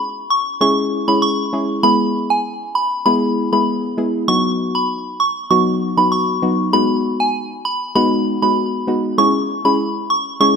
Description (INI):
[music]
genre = dancehall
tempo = 98 BPM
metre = 4/4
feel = straight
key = C# minor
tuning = A4 = 441 Hz
[part]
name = soft synth bell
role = melody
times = 0.3-10.5 s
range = G#5 to C#6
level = -18 LUFS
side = right 1 dB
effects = chorus, phaser, ping-pong delay
[part]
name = soft round pluck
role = accompaniment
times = 0.6-10.6 s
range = F#3 to G#4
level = -18 LUFS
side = left 1 dB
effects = chorus
[sound]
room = light reverb, digital ambience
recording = none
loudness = -15 LUFS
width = side -6 dB against mid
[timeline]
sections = 0.0-9.2 A section; 9.2-10.6 B section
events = none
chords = 0.0 C#m; 1.8 E; 4.3 B; 6.7 G#m7; 9.2 C#m